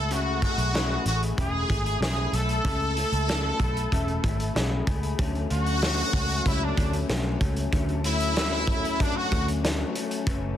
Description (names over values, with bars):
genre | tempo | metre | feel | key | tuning
indie pop, bedroom pop | 94 BPM | 4/4 | straight | unclear | A4 = 440 Hz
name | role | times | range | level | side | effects
brilliant trumpet | melody | 0.0-9.5 s | D4 to A4 | -28 LUFS | equal | ensemble chorus
electric guitar through a small old amp | accompaniment | 0.0-10.6 s | F#2 to G#4 | -31 LUFS | left 5 dB | ensemble chorus, vibrato effect
vintage muted picked electric bass | bass | 0.0-10.5 s | E1 to D2 | -28 LUFS | equal | none
loose indie drum kit | drums | 0.1-10.4 s | hi-hat, kick drum, snare drum | -28 LUFS | equal | none
room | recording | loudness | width
light reverb, small room ambience | dense, heavily limited modern master | -23 LUFS | side -10 dB against mid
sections
0.0-5.2 A section; 5.2-10.6 B section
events
trumpet solo 5.2-10.6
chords
0.0 Amaj7; 5.2 Dmaj7